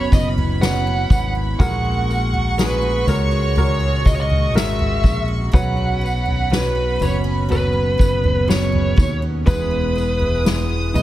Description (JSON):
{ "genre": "pop ballad", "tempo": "61 BPM", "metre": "4/4", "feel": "straight", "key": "B major", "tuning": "A4 = 440 Hz", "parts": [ { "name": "bluesy overdriven lead guitar", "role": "melody", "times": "0.0-11.0 s", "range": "B4 to F#5", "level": "-23 LUFS", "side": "right 1 dB", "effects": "distortion, analog delay" }, { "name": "warm studio violin section", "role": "second line", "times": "0.0-11.0 s", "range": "B5 to D#6", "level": "-30 LUFS", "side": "right 2 dB", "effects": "analog delay" }, { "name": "warm grand piano", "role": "accompaniment", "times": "0.0-11.0 s", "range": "A#2 to B4", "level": "-27 LUFS", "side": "left 2 dB", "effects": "analog delay" }, { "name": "glassy FM pad", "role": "sustained chords", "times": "0.0-11.0 s", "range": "A#2 to G#4", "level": "-30 LUFS", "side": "right 2 dB", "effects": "ensemble chorus, built-in reverb" }, { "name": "picked steel-string acoustic guitar", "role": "arpeggios", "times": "0.0-11.0 s", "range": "A#2 to B4", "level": "-31 LUFS", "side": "right 5 dB", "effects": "none" }, { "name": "fingered electric bass", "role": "bass", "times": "0.0-11.0 s", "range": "E1 to D#2", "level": "-21 LUFS", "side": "equal", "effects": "none" }, { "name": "soft-mallet drum kit", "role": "drums", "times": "0.1-11.0 s", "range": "kick drum, snare drum, toms", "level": "-20 LUFS", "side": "equal", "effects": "none" }, { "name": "tambourine", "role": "percussion", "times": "0.1-11.0 s", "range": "none", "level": "-38 LUFS", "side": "left 6 dB", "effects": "none" } ], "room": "little or no reverb", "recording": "echo-heavy mix", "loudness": "-16 LUFS", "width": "side -14 dB against mid", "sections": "0.0-11.0 A section", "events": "none", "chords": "0.0 Bsus2; 1.6 F#add9/A#; 5.5 Bsus2; 9.5 E", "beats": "0.62 | 1.60 2.58 3.57 4.55 | 5.54 6.52 7.50 8.49 | 9.47 10.45" }